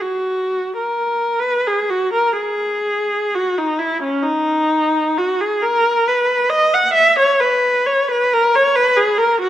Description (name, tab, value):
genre	classical, free, expressive piece for unaccompanied viola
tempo	24-46 BPM (dotted quarters)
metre	6/8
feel	rubato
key	B major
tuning	A4 = 440 Hz
part	warm viola	solo	0.0-9.5 s	C#4 to F#5	-14 LUFS	equal	none
room	moderate recital hall reverb, RT60 1.7 s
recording	none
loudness	-14 LUFS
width	side -12 dB against mid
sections	0.0-1.4 A section; 1.4-9.5 A section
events	none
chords	none